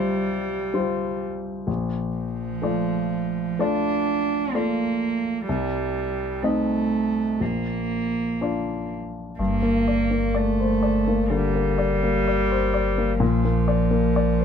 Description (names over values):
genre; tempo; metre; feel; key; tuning
neoclassical piano and strings; 63 BPM; 4/4; rubato; Bb major; A4 = 437 Hz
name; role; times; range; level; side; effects
warm cello; second line; 0.0-14.4 s; F3 to D4; -24 LUFS; right 6 dB; none
warm grand piano; accompaniment; 0.0-14.4 s; Bb1 to Eb5; -24 LUFS; left 5 dB; none
pure sine sub bass; bass; 9.4-14.4 s; G1 to Bb1; -26 LUFS; left 2 dB; none
room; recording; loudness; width
light reverb; none; -21 LUFS; side -7 dB against mid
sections
0.0-9.4 A section; 9.4-14.4 B section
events
none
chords
0.0 Fsus2/C; 1.7 Bbmaj7; 5.5 Cm; 7.4 Bb; 9.4 Gm; 13.2 Bb